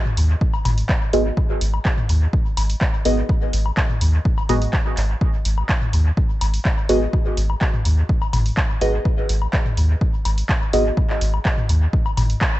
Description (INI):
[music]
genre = dub techno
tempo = 125 BPM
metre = 4/4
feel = straight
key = G# minor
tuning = A4 = 440 Hz
[part]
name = electronic toms and woodblock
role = percussion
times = 0.1-12.3 s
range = none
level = -27 LUFS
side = left 2 dB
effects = sidechain pumping on perc, sidechain pumping on toms, dub echo
[part]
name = soft dub sub bass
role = bass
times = 0.2-12.4 s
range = G#1 to D#2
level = -18 LUFS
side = equal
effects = sidechain pumping
[part]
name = punchy analog drum machine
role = drums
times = 0.2-12.5 s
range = handclaps, hi-hat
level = -27 LUFS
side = right 1 dB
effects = dub echo
[part]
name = electronic kick drum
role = drums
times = 0.4-12.5 s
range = none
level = -21 LUFS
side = equal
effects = none
[part]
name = deep mellow chord stab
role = stabs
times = 1.1-10.8 s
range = B3 to D#5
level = -23 LUFS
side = right 1 dB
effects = chorus, phaser, dub echo
[sound]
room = digital ambience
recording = echo-heavy mix, nothing above 8.0 kHz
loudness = -17 LUFS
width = side -16 dB against mid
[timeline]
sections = 0.0-12.6 A section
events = band accent 12.4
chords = 0.0 G#m7